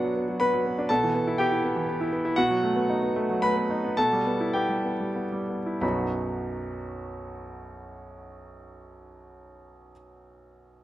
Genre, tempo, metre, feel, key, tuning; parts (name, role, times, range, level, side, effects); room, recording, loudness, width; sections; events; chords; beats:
classical, virtuoso piano study; 87-123 BPM; 3/4; rubato; A4 = 437 Hz
clear concert grand piano; solo; 0.0-10.8 s; B1 to B5; -25 LUFS; equal
moderate recital hall reverb, RT60 1.4 s; close, detailed microphones; -24 LUFS; side -14 dB against mid
0.0-5.8 A section; 5.8-9.7 B section
slowing down 1.6-5.8
0.0 Bm; 0.9 Em/B; 2.4 B7; 4.0 Em/B; 5.8 B
0.41 | 0.90 1.39 1.88 | 2.37 2.89 3.42 | 3.97 4.54 5.15 | 5.82 6.47 7.12 | 7.78 8.44 9.09